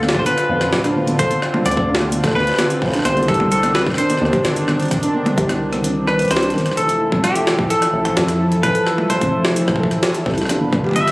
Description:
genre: IDM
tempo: 129 BPM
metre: 4/4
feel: straight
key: F lydian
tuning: A4 = 440 Hz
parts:
  - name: semi-hollow electric guitar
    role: melody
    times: 0.0-11.1 s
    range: G4 to E5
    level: -20 LUFS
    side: equal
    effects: tape echo
  - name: warm analog pad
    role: sustained chords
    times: 0.0-11.1 s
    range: D3 to B4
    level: -23 LUFS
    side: equal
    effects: chorus
  - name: felt-muted upright piano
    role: arpeggios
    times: 0.0-11.0 s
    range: D3 to A4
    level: -21 LUFS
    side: equal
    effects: vintage 12-bit sampler grit, tape echo
  - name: deep acid bass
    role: bass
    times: 0.0-11.1 s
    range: D1 to F2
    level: -23 LUFS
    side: equal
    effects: none
  - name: jungle sampler-style drum kit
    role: drums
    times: 0.0-11.1 s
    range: hi-hat, rim click, snare drum, toms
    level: -22 LUFS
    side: equal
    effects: overdrive, small room ambience
  - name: electronic kick drum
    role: drums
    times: 0.1-10.8 s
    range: none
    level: -24 LUFS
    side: equal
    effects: overdrive, small room ambience
room: moderate lush hall reverb, RT60 2.3 s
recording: recorded on a phone in the room, club reverb, compression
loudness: -15 LUFS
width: side -20 dB against mid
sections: 0.0-11.1 A section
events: kick drops out 5.8-6.8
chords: 0.0 Dm7; 3.1 Cmadd9; 6.8 Fmaj7; 10.5 G7

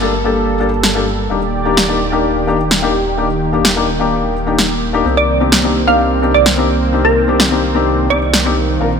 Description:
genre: EDM, festival progressive house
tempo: 128 BPM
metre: 4/4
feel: straight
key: unclear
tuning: A4 = 441 Hz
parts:
  - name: glassy wavetable pluck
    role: melody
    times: 0.0-0.2, 5.2-8.5 s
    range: Bb4 to F5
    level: -16 LUFS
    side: right 3 dB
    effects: chorus, tape echo
  - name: felt-muted upright piano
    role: accompaniment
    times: 0.0-8.9 s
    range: Bb3 to Bb4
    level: -17 LUFS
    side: left 5 dB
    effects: ping-pong delay
  - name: lush unison pad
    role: sustained chords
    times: 0.0-9.0 s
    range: Eb3 to D5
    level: -18 LUFS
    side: right 1 dB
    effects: chorus, vintage 12-bit sampler grit
  - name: detuned saw bass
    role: bass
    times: 0.0-9.0 s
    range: Eb1 to C2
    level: -20 LUFS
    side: right 1 dB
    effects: none
  - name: electronic snare drum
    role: drums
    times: 0.8-8.4 s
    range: none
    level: -16 LUFS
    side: equal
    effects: none
  - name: riser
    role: sound effects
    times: 8.8-9.0 s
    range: none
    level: barely audible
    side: none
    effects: none
room: moderate lush hall reverb, RT60 1.9 s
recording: none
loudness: -12 LUFS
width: side -6 dB against mid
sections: 0.0-9.0 A section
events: none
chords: 0.0 Gmadd9; 1.3 Ebmaj7; 5.1 Cmadd9

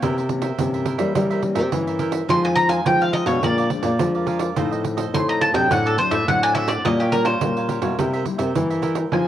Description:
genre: samba and choro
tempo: 106 BPM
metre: 4/4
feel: straight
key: unclear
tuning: A4 = 439 Hz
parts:
  - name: cavaquinho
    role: accompaniment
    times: 0.0-9.3 s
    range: Eb4 to F5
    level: -29 LUFS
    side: right 6 dB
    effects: cassette tape
  - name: nylon-string guitar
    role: accompaniment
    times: 0.0-9.3 s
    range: F2 to Ab4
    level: -29 LUFS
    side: left 8 dB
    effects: cassette tape
  - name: nylon-string guitar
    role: bass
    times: 0.0-9.3 s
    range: A2 to G3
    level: -22 LUFS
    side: left 1 dB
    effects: none
  - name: pandeiro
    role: percussion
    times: 0.0-9.3 s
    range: none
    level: -26 LUFS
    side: right 6 dB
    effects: none
  - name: bowl-back mandolin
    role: melody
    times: 2.3-9.3 s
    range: G4 to C6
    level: -21 LUFS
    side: equal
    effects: none
room: light reverb, studio reverb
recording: home recording on cassette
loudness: -18 LUFS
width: side -11 dB against mid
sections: 0.0-9.3 A section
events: mandolin solo 0.0-9.3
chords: 0.0 C7b9; 2.3 Fm7; 3.4 Bb7; 4.6 F7/A; 5.7 D7/A; 6.8 Gm7b5/Bb; 8.0 C7

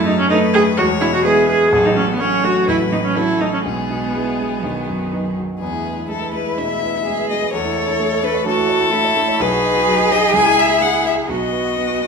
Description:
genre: quick classical-period movement for piano quartet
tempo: 126 BPM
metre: 4/4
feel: straight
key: E major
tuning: A4 = 441 Hz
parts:
  - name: rich violin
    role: melody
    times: 0.0-12.1 s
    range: G#4 to G#5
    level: -20 LUFS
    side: left 7 dB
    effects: none
  - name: rich cello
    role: second line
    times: 0.0-12.1 s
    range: D#3 to A4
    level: -21 LUFS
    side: right 5 dB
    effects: none
  - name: warm grand piano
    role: accompaniment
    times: 0.0-12.1 s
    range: A1 to E5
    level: -22 LUFS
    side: equal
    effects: none
  - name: rich viola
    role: accompaniment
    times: 0.1-12.1 s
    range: G#3 to G#4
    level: -20 LUFS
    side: right 1 dB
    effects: none
room: wet recital hall reverb, RT60 1.8 s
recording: minimal, uncompressed stereo recording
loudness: -15 LUFS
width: side -5 dB against mid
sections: 0.0-5.6 A section; 5.6-12.1 B section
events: none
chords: 0.0 D#dim/F#; 0.8 E; 1.7 F#m/A; 3.6 E/B; 4.6 B; 5.6 E; 7.5 A/E; 9.4 B; 10.3 C#m; 11.3 B

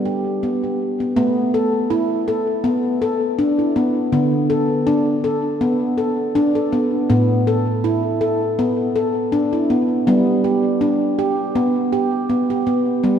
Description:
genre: world meditative, meditative tuned percussion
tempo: 81 BPM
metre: 4/4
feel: swing 55% on 16ths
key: G major pentatonic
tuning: A4 = 440 Hz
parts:
  - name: handpan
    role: solo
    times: 0.0-13.2 s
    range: A2 to A4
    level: -16 LUFS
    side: equal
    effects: analog delay
room: wet lush hall reverb, RT60 3.0 s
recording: dreamy mix soaked in reverb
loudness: -16 LUFS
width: side -8 dB against mid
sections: 0.0-1.2 A section; 1.2-13.0 B section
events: none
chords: 0.0 G; 1.2 A5; 4.1 D5; 7.1 A5; 10.1 G

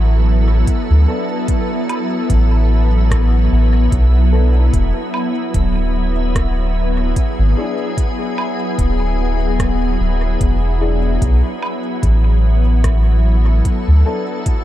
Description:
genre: ambient dub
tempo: 74 BPM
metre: 4/4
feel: swing 56% on 16ths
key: E mixolydian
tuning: A4 = 440 Hz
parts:
  - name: soft additive organ-like pad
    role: sustained chords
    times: 0.0-14.6 s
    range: F#3 to A4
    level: -20 LUFS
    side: equal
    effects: ensemble chorus, built-in reverb
  - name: soft dub sub bass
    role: bass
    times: 0.0-14.0 s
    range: D1 to D2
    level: -13 LUFS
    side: equal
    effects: none
  - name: electronic kick drum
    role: drums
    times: 0.7-14.6 s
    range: none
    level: -18 LUFS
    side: equal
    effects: none
  - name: organic electronic drum kit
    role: drums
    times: 0.7-14.6 s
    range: hi-hat, rim click, woodblock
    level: -30 LUFS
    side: right 1 dB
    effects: dub echo
  - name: dark upright piano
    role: stabs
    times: 1.1-14.3 s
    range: B3 to A4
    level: -28 LUFS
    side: left 4 dB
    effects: dub echo
room: light reverb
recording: none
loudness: -13 LUFS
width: side -13 dB against mid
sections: 0.0-14.6 A section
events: none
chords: 0.0 Bm7; 4.7 E7; 11.2 Bm7

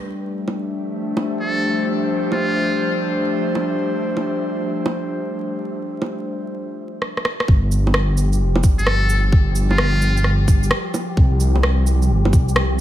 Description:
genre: future garage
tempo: 130 BPM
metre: 4/4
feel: swing 66% on 16ths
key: unclear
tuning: A4 = 440 Hz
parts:
  - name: airy breathy pad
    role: sustained chords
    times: 0.0-12.8 s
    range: F3 to C5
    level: -24 LUFS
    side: left 1 dB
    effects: chorus, sidechain pumping
  - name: wind-like tuned noise texture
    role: texture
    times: 0.4-12.8 s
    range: F3 to E5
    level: -30 LUFS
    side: left 2 dB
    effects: built-in reverb
  - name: electronic bongos, rim click and shaker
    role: drums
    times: 0.5-12.7 s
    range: none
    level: -22 LUFS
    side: right 1 dB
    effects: studio reverb
  - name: trumpet with metal mute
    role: melody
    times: 1.4-3.0, 8.8-10.3 s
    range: F4 to A4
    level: -24 LUFS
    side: left 1 dB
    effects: vintage 12-bit sampler grit, ping-pong delay
  - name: dark detuned saw bass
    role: bass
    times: 7.5-12.8 s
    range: F1 to C2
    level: -17 LUFS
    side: equal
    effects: sidechain pumping
  - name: electronic kick drum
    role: drums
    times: 7.5-12.4 s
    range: none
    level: -14 LUFS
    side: equal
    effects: studio reverb
room: light reverb, digital ambience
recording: vinyl crackle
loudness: -17 LUFS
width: side -12 dB against mid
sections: 0.1-7.5 A section; 7.5-12.8 B section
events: drum fill 7.0-7.5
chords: 0.1 G7sus4; 7.5 Fsus2; 11.2 C5

